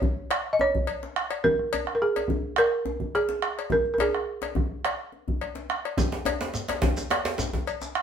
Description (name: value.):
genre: west african traditional, West African drum ensemble.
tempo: 106 BPM.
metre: 4/4.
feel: straight.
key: unclear.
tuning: A4 = 440 Hz.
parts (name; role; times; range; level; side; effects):
balafon; melody; 0.0-5.1 s; Ab4 to Eb5; -24 LUFS; right 1 dB; none.
bombo; percussion; 0.0-8.0 s; none; -29 LUFS; right 3 dB; none.
djembe; percussion; 0.0-7.9 s; none; -32 LUFS; left 3 dB; none.
cowbell; percussion; 0.3-7.8 s; none; -32 LUFS; left 7 dB; none.
djembe; percussion; 6.0-7.7 s; none; -30 LUFS; right 2 dB; none.
shekere; percussion; 6.0-7.9 s; none; -36 LUFS; equal; none.
room: wet studio reverb, RT60 0.6 s.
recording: band playing live in one room.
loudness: -24 LUFS.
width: side -8 dB against mid.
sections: 0.0-6.0 A section; 6.0-8.0 B section.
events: none.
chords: none.